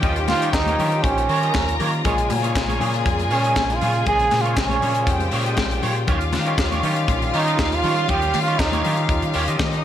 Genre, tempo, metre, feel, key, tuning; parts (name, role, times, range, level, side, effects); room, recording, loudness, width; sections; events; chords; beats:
disco; 119 BPM; 4/4; straight; A4 = 439 Hz
warm studio string section; second line; 0.0-9.8 s; Eb4 to Bb5; -26 LUFS; left 3 dB
barky tine electric piano; accompaniment; 0.0-9.8 s; Bb2 to Bb4; -29 LUFS; left 3 dB; auto-pan
electric guitar at the edge of break-up; accompaniment; 0.0-9.8 s; F4 to Eb5; -29 LUFS; right 5 dB; ensemble chorus
clear studio string section; sustained chords; 0.0-9.8 s; Db3 to C5; -30 LUFS; left 1 dB
overdriven fingered electric bass; bass; 0.0-9.8 s; Bb1 to Eb3; -24 LUFS; equal
tight funk drum kit; drums; 0.0-9.8 s; hi-hat, kick drum, snare drum; -25 LUFS; equal
congas; percussion; 0.0-9.8 s; -31 LUFS; left 7 dB
bright trombone; melody; 0.3-9.3 s; Ab3 to Ab4; -22 LUFS; right 3 dB
group handclap; percussion; 0.3-9.7 s; -36 LUFS; left 2 dB
light reverb, small room ambience; -18 LUFS; side -10 dB against mid
0.0-9.8 A section
trombone solo 0.0-9.8
0.0 Eb9; 2.0 Bbm7; 6.1 Eb9
| 0.03 0.54 1.04 1.55 | 2.05 2.55 3.06 3.56 | 4.07 4.57 5.07 5.58 | 6.08 6.58 7.09 7.59 | 8.09 8.60 9.10 9.60